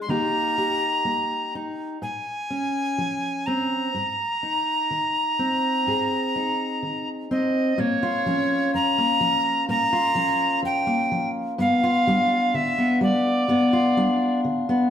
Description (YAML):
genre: acoustic folk duo or small band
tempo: 63 BPM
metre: 4/4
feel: straight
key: Bb dorian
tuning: A4 = 440 Hz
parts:
  - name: alto recorder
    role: melody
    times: 0.0-14.4 s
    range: Db5 to C6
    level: -23 LUFS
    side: equal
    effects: none
  - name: fingerpicked steel-string acoustic guitar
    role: accompaniment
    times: 0.0-14.9 s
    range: F2 to Ab4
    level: -23 LUFS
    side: equal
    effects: none
room: wet stone room reverb, RT60 1.2 s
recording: band playing live in one room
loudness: -20 LUFS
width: side -9 dB against mid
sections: 0.0-7.8 A section; 7.8-14.9 B section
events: none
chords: 0.1 Eb; 2.0 Bbmadd9; 3.9 Abadd9; 7.8 Bbm; 11.6 G7